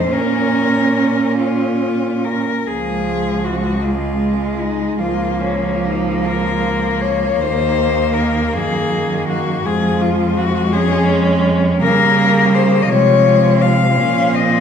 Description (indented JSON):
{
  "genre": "classical, lyrical piece for cello ensemble",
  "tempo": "45-57 BPM (dotted quarters)",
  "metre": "6/8",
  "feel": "rubato",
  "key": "Db major",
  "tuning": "A4 = 440 Hz",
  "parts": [
    { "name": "rich cello", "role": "melody", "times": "0.0-14.6 s", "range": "Db4 to F5", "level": "-18 LUFS", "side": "left 7 dB", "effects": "none" },
    { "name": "rich cello", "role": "second line", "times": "0.0-14.6 s", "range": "Eb3 to Eb4", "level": "-20 LUFS", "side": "right 6 dB", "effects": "none" },
    { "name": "rich cello", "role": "accompaniment", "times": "0.0-14.6 s", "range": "Ab3 to Db4", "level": "-21 LUFS", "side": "left 2 dB", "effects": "none" },
    { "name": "rich cello", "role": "bass", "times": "0.0-14.6 s", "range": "Db2 to Db3", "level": "-20 LUFS", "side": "right 2 dB", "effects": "none" }
  ],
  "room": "wet recital hall reverb, RT60 1.6 s",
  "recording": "recorded in a church or concert hall",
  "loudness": "-14 LUFS",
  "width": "side -7 dB against mid",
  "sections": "0.0-2.7 A section; 2.7-14.6 B section",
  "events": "none",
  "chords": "0.1 Bbm; 2.7 Db; 5.0 Bbm/Db; 7.4 Ebm; 9.7 Db/F; 11.8 Db; 14.0 Bbmadd11",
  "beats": "| 0.11 1.38 | 2.67 3.84 | 5.00 6.26 | 7.41 8.54 | 9.66 10.74 | 11.83 12.89 | 13.97"
}